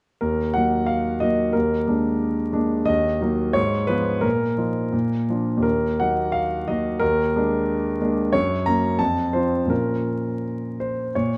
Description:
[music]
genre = classical, romantic character piece for solo piano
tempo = 81-94 BPM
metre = 2/4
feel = rubato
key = Eb minor, Bb minor from 8.3 s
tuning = A4 = 440 Hz
[part]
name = warm concert grand piano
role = solo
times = 0.2-11.4 s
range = Eb2 to Bb5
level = -22 LUFS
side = equal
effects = none
[sound]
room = moderate large studio reverb, RT60 1.3 s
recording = vinyl crackle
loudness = -22 LUFS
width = mono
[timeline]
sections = 0.2-11.1 A section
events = none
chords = 0.2 Ebm; 1.5 Bb7/Eb; 2.9 Ebm; 3.6 Fdim/Ab; 4.2 Bbsus4; 4.9 Bb; 5.6 Ebm; 7.0 Bb7/Eb; 8.3 Gb; 9.0 F; 9.7 Bbm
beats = | 0.21 0.89 | 1.54 2.19 | 2.88 3.55 | 4.24 4.93 | 5.64 6.32 | 7.01 7.68 | 8.32 8.99 | 9.70 10.43 | 11.14

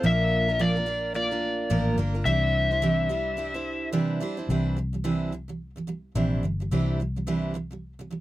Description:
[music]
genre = acoustic pop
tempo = 108 BPM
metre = 4/4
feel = swing 60% on 16ths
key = unclear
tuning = A4 = 436 Hz
[part]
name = overdriven slide guitar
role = melody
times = 0.0-3.9 s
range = D5 to E5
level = -26 LUFS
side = left 2 dB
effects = none
[part]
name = picked steel-string acoustic guitar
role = accompaniment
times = 0.0-8.2 s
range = Bb2 to C5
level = -27 LUFS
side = right 2 dB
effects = none
[part]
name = vintage muted fingered electric bass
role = bass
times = 0.0-8.2 s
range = G1 to C2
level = -28 LUFS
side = left 1 dB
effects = none
[sound]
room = little or no reverb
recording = none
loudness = -24 LUFS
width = side -15 dB against mid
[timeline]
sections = 0.0-4.5 A section; 4.5-8.2 B section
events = none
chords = 0.0 Bb; 2.3 Cadd9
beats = | 0.04 0.60 1.15 1.71 | 2.26 2.82 3.38 3.93 | 4.49 5.04 5.60 6.15 | 6.71 7.27 7.82

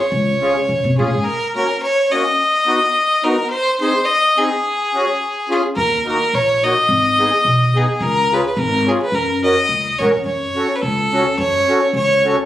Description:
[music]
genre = alpine folk, alpine dance band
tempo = 107 BPM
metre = 2/4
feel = swing 55% on 8ths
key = F# major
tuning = A4 = 439 Hz
[part]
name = clear fiddle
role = melody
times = 0.0-12.4 s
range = G#4 to D#5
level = -16 LUFS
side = equal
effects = plate reverb
[part]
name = upright bass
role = bass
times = 0.1-1.2, 5.8-12.3 s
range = G#1 to Db3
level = -21 LUFS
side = left 1 dB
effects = none
[part]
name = accordion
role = accompaniment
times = 0.4-12.4 s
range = A#3 to A#4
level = -19 LUFS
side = equal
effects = light tremolo tuning
[sound]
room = wet studio reverb, RT60 0.6 s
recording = recorded on a phone in the room, club reverb, compression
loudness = -14 LUFS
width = side -13 dB against mid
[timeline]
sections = 0.0-1.2 A section; 1.2-10.3 B section; 10.3-12.5 C section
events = none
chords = 0.0 Db; 1.2 F#; 2.4 B; 3.5 G#; 4.6 C#sus4; 5.2 C#; 5.8 D#m; 6.9 G#m; 8.0 C#; 9.1 F#; 10.3 F#m/C#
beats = | 0.12 0.68 | 1.25 1.81 | 2.38 2.94 | 3.50 4.07 | 4.63 5.20 | 5.76 6.33 | 6.88 7.44 | 8.00 8.56 | 9.12 9.69 | 10.25 10.82 | 11.38 11.94

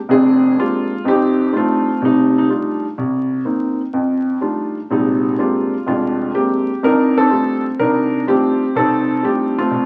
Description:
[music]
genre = solo jazz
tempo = 125 BPM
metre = 4/4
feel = swing 69% on 8ths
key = F mixolydian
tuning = A4 = 440 Hz
[part]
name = warm concert grand piano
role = solo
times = 0.1-9.9 s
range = F1 to Bb4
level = -17 LUFS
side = equal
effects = none
[sound]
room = moderate large studio reverb, RT60 1.1 s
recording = very old 78 rpm record, vinyl crackle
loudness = -17 LUFS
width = mono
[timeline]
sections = 0.0-9.9 A section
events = none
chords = 0.0 Bb13; 1.1 F13; 3.0 Cm7; 3.9 F13; 4.9 Bb13; 6.8 F13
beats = 0.09 0.57 | 1.05 1.53 2.01 2.49 | 2.98 3.46 3.94 4.42 | 4.90 5.38 5.86 6.35 | 6.83 7.31 7.79 8.27 | 8.76 9.24 9.72

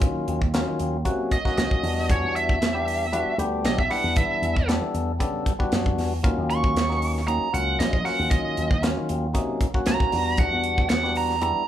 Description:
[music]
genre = electric jazz fusion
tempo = 116 BPM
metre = 4/4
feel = swing 53% on 16ths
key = unclear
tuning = A4 = 440 Hz
[part]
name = percussive tonewheel organ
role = accompaniment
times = 0.0-11.6 s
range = Gb3 to A4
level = -28 LUFS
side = left 3 dB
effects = overdrive
[part]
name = slap bass with an envelope filter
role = bass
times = 0.0-11.6 s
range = Bb1 to E3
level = -28 LUFS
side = equal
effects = none
[part]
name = tight funk drum kit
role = drums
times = 0.0-11.5 s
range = hi-hat, kick drum, snare drum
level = -25 LUFS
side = equal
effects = none
[part]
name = biting lead guitar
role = melody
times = 1.3-11.7 s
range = Db5 to Db6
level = -25 LUFS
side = right 3 dB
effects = overdrive
[sound]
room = moderate large studio reverb, RT60 0.8 s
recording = band playing live in one room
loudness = -21 LUFS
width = side -11 dB against mid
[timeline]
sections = 0.0-11.7 A section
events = lead electric guitar solo 0.0-11.7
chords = 0.0 Ebm9; 1.8 Em9; 6.2 Ebm9; 10.1 Em9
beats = | 0.02 0.54 1.05 1.57 | 2.09 2.61 3.13 3.65 | 4.17 4.69 5.20 5.72 | 6.24 6.76 7.28 7.80 | 8.31 8.83 9.35 9.87 | 10.39 10.91 11.43

